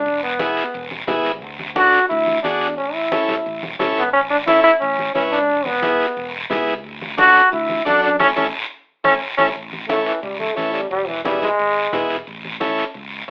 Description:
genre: latin, cumbia.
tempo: 177 BPM.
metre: 4/4.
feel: straight.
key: A major.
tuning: A4 = 439 Hz.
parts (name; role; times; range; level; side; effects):
bright trombone; melody; 0.0-12.1 s; E3 to F#4; -19 LUFS; equal; none.
fingered electric bass; bass; 0.0-13.2 s; E1 to F#2; -40 LUFS; equal; none.
congas; percussion; 0.1-13.1 s; none; -32 LUFS; equal; none.
guiro; percussion; 0.1-13.3 s; none; -31 LUFS; equal; none.
combo organ; accompaniment; 0.4-12.8 s; B3 to B4; -24 LUFS; equal; none.
room: moderate studio reverb, RT60 0.5 s.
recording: telephone sound.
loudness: -19 LUFS.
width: mono.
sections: 0.0-9.6 A section; 9.6-13.3 B section.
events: band accent 8.2-9.6; drum fill 8.9-9.6; transistor combo organ fill 9.0-9.6; trombone solo 9.6-13.3.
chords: 0.1 E; 1.4 D; 2.8 A; 5.5 E; 6.8 D; 8.2 A; 10.9 E; 12.3 A.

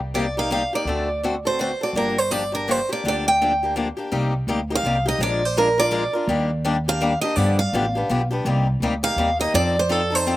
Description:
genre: acoustic string swing (jazz manouche).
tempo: 166 BPM.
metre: 3/4.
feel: swing 61% on 8ths.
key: G minor.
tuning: A4 = 440 Hz.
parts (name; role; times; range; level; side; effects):
upright bass; bass; 0.0-10.4 s; G1 to G2; -26 LUFS; equal; none.
picked steel-string acoustic guitar; melody; 0.1-10.4 s; A4 to G5; -21 LUFS; right 2 dB; none.
picked swing-style acoustic guitar; accompaniment; 0.1-10.4 s; C3 to Bb4; -24 LUFS; left 3 dB; slapback echo.
room: little or no reverb.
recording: recorded outdoors, with no room sound.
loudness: -19 LUFS.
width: side -16 dB against mid.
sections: 0.0-4.1 A section; 4.1-10.4 B section.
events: none.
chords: 0.0 Cm7; 0.9 D7; 1.9 Gm7; 4.1 Cm7; 5.2 Bb7; 6.3 Ebmaj7; 7.4 G7; 8.5 Cm7; 9.5 F7.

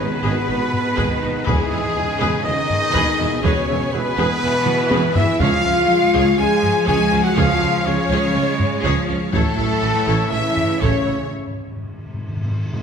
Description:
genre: cinematic, epic orchestral film score.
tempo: 122 BPM.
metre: 4/4.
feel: straight.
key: unclear.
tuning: A4 = 440 Hz.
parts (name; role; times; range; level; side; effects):
warm symphonic violin section; melody; 0.0-11.3 s; G#4 to G#5; -29 LUFS; left 3 dB; none.
flute section; second line; 0.0-11.3 s; G#4 to G#5; -27 LUFS; left 2 dB; none.
rich symphonic violin section; second line; 0.0-11.3 s; G#4 to G#5; -29 LUFS; left 2 dB; none.
rich chamber viola section; accompaniment; 0.0-11.2 s; B3 to C#5; -27 LUFS; equal; none.
mellow French horn section; sustained chords; 0.0-11.3 s; G#3 to G#4; -24 LUFS; left 3 dB; none.
mellow trombone section; sustained chords; 0.0-11.3 s; G#2 to G#3; -28 LUFS; right 3 dB; none.
rich symphonic string section; sustained chords; 0.0-11.3 s; G#3 to G#5; -29 LUFS; left 2 dB; none.
warm trumpet; stabs; 0.0-11.3 s; G#4 to G#5; -25 LUFS; right 1 dB; none.
clear studio double bass section; bass; 0.0-11.1 s; G#1 to E2; -25 LUFS; right 3 dB; none.
mellow tuba; bass; 0.0-11.2 s; E1 to C#2; -27 LUFS; right 3 dB; none.
rich symphonic cello section; bass; 0.0-11.3 s; B2 to G#3; -27 LUFS; right 2 dB; none.
taiko ensemble; drums; 0.7-11.3 s; none; -25 LUFS; left 1 dB; none.
timpani; percussion; 11.3-12.8 s; G#2; -25 LUFS; equal; none.
room: moderate scoring stage reverb, RT60 1.9 s.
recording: none.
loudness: -16 LUFS.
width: side -7 dB against mid.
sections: 0.0-12.8 A section.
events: drum fill 4.7-5.4; break 11.3-12.8; timpani fill 11.3-12.8.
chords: 0.0 G#m; 1.5 E; 5.4 C#; 9.3 A; 11.3 N.C..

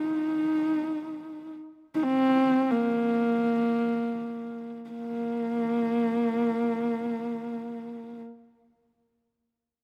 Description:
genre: mongolian traditional, Mongolian folk.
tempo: free time.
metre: none.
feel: none.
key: unclear.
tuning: A4 = 440 Hz.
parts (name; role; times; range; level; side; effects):
dark horsehead fiddle; solo; 0.0-8.2 s; Bb3 to Eb4; -28 LUFS; equal; none.
room: light reverb.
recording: close, detailed microphones.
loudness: -28 LUFS.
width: mono.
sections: 0.0-4.9 A section; 4.9-9.8 B section.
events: slowing down 0.7-4.9.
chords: none.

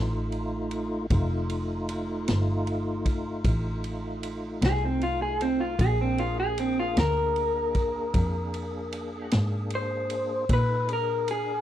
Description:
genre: slow blues.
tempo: 51 BPM (dotted quarters).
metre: 12/8.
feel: straight.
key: F mixolydian.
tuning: A4 = 440 Hz.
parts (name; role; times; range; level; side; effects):
tonewheel organ; sustained chords; 0.0-11.6 s; A3 to B4; -33 LUFS; equal; slow rotary speaker, chorus vibrato.
warm double bass; bass; 0.0-11.6 s; F1 to Bb2; -29 LUFS; equal; none.
vintage drum kit; drums; 0.3-11.5 s; kick drum, ride cymbal, snare drum; -29 LUFS; equal; none.
electric guitar through a small old amp; melody; 4.7-11.6 s; C4 to C5; -27 LUFS; equal; wide subtle chorus.
room: little or no reverb.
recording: dry, close 1970s-style studio recording.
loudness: -25 LUFS.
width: side -12 dB against mid.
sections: 0.0-11.6 A section.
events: clean electric guitar solo 0.0-11.6.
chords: 0.0 F7; 5.8 Bb7.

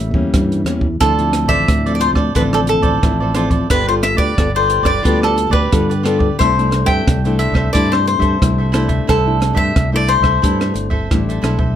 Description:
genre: samba and choro.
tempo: 89 BPM.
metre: 4/4.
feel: straight.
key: C major.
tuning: A4 = 438 Hz.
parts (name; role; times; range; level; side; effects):
cavaquinho; melody; 0.0-11.4 s; A4 to G5; -18 LUFS; left 2 dB; none.
nylon-string guitar; accompaniment; 0.0-11.7 s; A2 to A4; -20 LUFS; left 4 dB; none.
fingered electric bass; bass; 0.0-11.7 s; G1 to G2; -18 LUFS; right 1 dB; none.
compact cocktail drum kit; drums; 0.1-11.8 s; hi-hat, kick drum, rim click; -19 LUFS; right 1 dB; none.
cavaquinho; accompaniment; 1.0-11.8 s; E4 to E5; -24 LUFS; right 4 dB; none.
room: moderate small room reverb, RT60 0.5 s.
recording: none.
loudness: -13 LUFS.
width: side -10 dB against mid.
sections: 0.0-11.8 A section.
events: none.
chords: 0.0 A7b9; 1.0 Dm9; 3.7 G9; 6.4 C69.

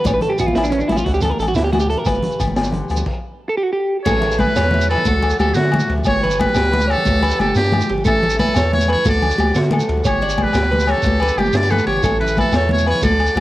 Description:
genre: highlife guitar band.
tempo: 120 BPM (dotted quarters).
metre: 12/8.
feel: straight.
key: A mixolydian.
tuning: A4 = 441 Hz.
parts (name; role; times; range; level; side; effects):
fingerpicked swing-style acoustic guitar; accompaniment; 0.0-13.4 s; F#2 to A4; -28 LUFS; left 3 dB; cassette tape.
electric guitar at the edge of break-up; arpeggios; 0.0-13.4 s; C#4 to D5; -20 LUFS; right 2 dB; cassette tape.
round analog bass; bass; 0.0-13.4 s; G1 to D3; -21 LUFS; equal; none.
crunchy breakbeat drum kit; drums; 0.0-13.4 s; crash cymbal, hi-hat, kick drum, ride cymbal, snare drum; -25 LUFS; equal; cassette tape.
congas; percussion; 0.0-13.4 s; none; -22 LUFS; left 1 dB; none.
agogo bells; percussion; 0.1-13.4 s; none; -26 LUFS; left 5 dB; none.
shekere; percussion; 0.1-13.4 s; none; -27 LUFS; right 2 dB; none.
trumpet with metal mute; melody; 4.0-13.4 s; F#4 to D5; -20 LUFS; equal; cassette tape.
room: light reverb, small room reverb.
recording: home recording on cassette.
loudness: -14 LUFS.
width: side -16 dB against mid.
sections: 0.0-4.1 A section; 4.1-13.4 B section.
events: clean electric guitar solo 0.0-4.1; stop 3.1-4.1.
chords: 0.1 A; 1.1 D; 2.1 G; 4.1 A; 5.1 D; 6.1 G; 8.1 A; 9.1 D; 10.1 G; 12.0 A.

